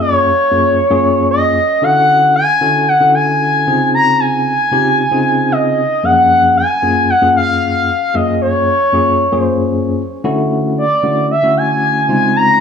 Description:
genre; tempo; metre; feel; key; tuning
funk; 114 BPM; 4/4; straight; Gb lydian; A4 = 440 Hz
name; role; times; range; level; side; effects
expressive portamento lead; melody; 0.0-12.6 s; Db5 to Bb5; -12 LUFS; equal; chorus, slapback echo
tine electric piano; accompaniment; 0.0-12.6 s; Gb2 to A4; -16 LUFS; left 2 dB; fast tremolo
room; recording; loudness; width
light reverb; small room ambience; -11 LUFS; side -6 dB against mid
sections
0.0-12.6 A section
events
none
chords
0.0 Gbmaj9; 1.8 Dmaj9; 3.7 Dbmaj9; 6.0 Gbmaj9; 10.2 Dmaj9; 12.1 Dbmaj9

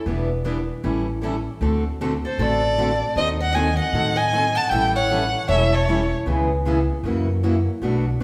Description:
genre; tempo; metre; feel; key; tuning
acoustic string swing (jazz manouche); 155 BPM; 4/4; swing 63% on 8ths; A mixolydian; A4 = 440 Hz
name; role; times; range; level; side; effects
picked acoustic archtop guitar; accompaniment; 0.1-8.2 s; B2 to B4; -31 LUFS; equal; none
picked steel-string acoustic guitar; accompaniment; 0.1-8.2 s; B2 to A4; -28 LUFS; equal; none
upright bass; bass; 0.1-8.2 s; E1 to A2; -26 LUFS; equal; none
picked swing-style acoustic guitar; second line; 2.2-6.1 s; A4 to F#5; -29 LUFS; equal; none
dark violin; melody; 2.3-6.1 s; C5 to A5; -24 LUFS; equal; none
room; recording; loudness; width
wet large studio reverb, RT60 1.3 s; band playing live in one room; -21 LUFS; mono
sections
0.0-8.2 A section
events
none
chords
0.1 Em7; 0.8 A7; 1.6 D7; 3.2 D#dim7; 4.7 A7; 6.3 C#m7; 7.0 F#7

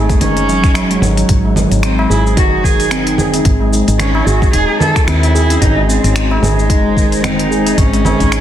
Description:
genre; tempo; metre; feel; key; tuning
organic downtempo; 111 BPM; 4/4; swing 57% on 16ths; G# phrygian dominant; A4 = 441 Hz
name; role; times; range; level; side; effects
dark cello; melody; 0.0-8.4 s; G#3 to A4; -18 LUFS; equal; tape echo
granular cloud pad; sustained chords; 0.0-8.4 s; E3 to A5; -22 LUFS; left 2 dB; built-in reverb, sidechain pumping
handpan; arpeggios; 0.0-8.3 s; D#3 to G#4; -17 LUFS; right 1 dB; tape echo
woody FM bass; bass; 0.0-8.4 s; D#1 to D#2; -16 LUFS; equal; none
electronic kick drum; drums; 0.1-8.3 s; none; -14 LUFS; equal; none
organic electronic drum kit; drums; 0.1-8.4 s; congas, finger snaps, hi-hat, shaker; -19 LUFS; right 1 dB; soft clipping on snare
tabla; percussion; 0.1-8.2 s; none; -25 LUFS; left 2 dB; none
room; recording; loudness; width
moderate scoring stage reverb, RT60 1.5 s; dense, heavily limited modern master; -10 LUFS; side -11 dB against mid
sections
0.0-8.4 A section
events
none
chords
0.0 A (rootless); 1.3 G#; 3.5 F#sus2/G#; 5.6 G#; 7.8 A/G#

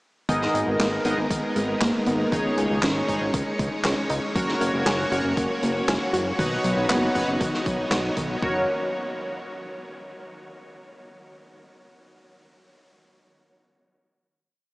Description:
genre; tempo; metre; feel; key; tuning
synthwave; 118 BPM; 4/4; straight; F# major; A4 = 441 Hz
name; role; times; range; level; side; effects
string machine, full ensemble; sustained chords; 0.3-8.7 s; G#3 to C#5; -28 LUFS; equal; ensemble chorus, sidechain pumping
analog pluck; arpeggios; 0.3-8.7 s; D#3 to F#4; -30 LUFS; equal; chorus, cassette tape, tape echo
chorused polysynth; stabs; 0.3-8.6 s; B3 to F#5; -29 LUFS; equal; tape echo
fat analog bass; bass; 0.3-8.7 s; F#1 to C#2; -28 LUFS; equal; sidechain pumping
electronic kick drum; drums; 0.3-8.5 s; none; -29 LUFS; equal; none
vintage drum kit; drums; 0.3-8.3 s; handclaps, hi-hat, snare drum; -30 LUFS; equal; none
room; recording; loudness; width
wet huge ambient reverb, RT60 7.8 s; dreamy mix soaked in reverb, small speaker sound; -22 LUFS; side -22 dB against mid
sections
0.3-8.4 chorus; 8.4-10.5 final chord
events
none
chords
0.3 G#madd9; 2.3 C#sus2; 4.4 F#; 6.4 Badd9; 8.4 F#

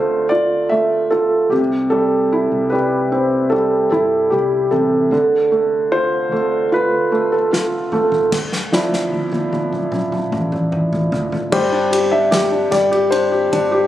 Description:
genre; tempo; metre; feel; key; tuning
pop ballad; 75 BPM; 4/4; straight; unclear; A4 = 441 Hz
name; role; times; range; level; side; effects
dark grand piano; melody; 0.0-13.9 s; G4 to E5; -18 LUFS; equal; none
felt-muted upright piano; accompaniment; 0.0-13.9 s; C3 to G4; -17 LUFS; right 1 dB; none
mellow fretless electric bass; bass; 0.0-13.9 s; G1 to D2; -28 LUFS; left 1 dB; none
unplugged drum kit; drums; 7.5-13.7 s; crash cymbal, kick drum, ride cymbal, snare drum, toms; -24 LUFS; left 1 dB; none
room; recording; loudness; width
light reverb, studio ambience; recorded on a phone in the room, club reverb, compression; -15 LUFS; side -13 dB against mid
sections
0.0-8.3 A section; 8.3-11.5 B section; 11.5-13.9 C section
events
drum fill 7.5-8.3, 8.3-11.5; felt piano solo 8.3-11.5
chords
0.0 Dm; 1.5 C; 5.1 Dm; 8.3 Dmadd9; 11.5 Gsus4

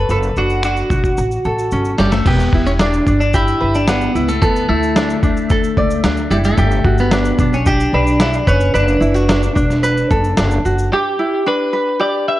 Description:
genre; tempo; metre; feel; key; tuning
acoustic pop; 111 BPM; 4/4; straight; unclear; A4 = 441 Hz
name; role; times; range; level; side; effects
twelve-string electric guitar; melody; 0.0-12.4 s; G3 to E5; -18 LUFS; left 1 dB; none
tenor ukulele; accompaniment; 0.0-12.4 s; C#4 to D5; -19 LUFS; right 2 dB; none
upright bass; bass; 0.0-10.9 s; E1 to D2; -18 LUFS; equal; none
dusty soul sampler-style drum kit; drums; 0.1-10.9 s; crash cymbal, finger snaps, kick drum, shaker, snare drum; -18 LUFS; equal; none
room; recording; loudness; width
light reverb, digital ambience; worn, warbling old tape, cassette tape, warbly pitch drift; -13 LUFS; side -15 dB against mid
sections
0.0-2.3 A section; 2.3-10.9 B section; 10.9-12.4 C section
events
drum fill 1.2-2.3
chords
0.0 Bm7/F#; 1.2 A7; 2.3 Em7; 4.4 Dsus2; 6.6 Gmaj7; 8.5 Bm7; 10.9 Em7

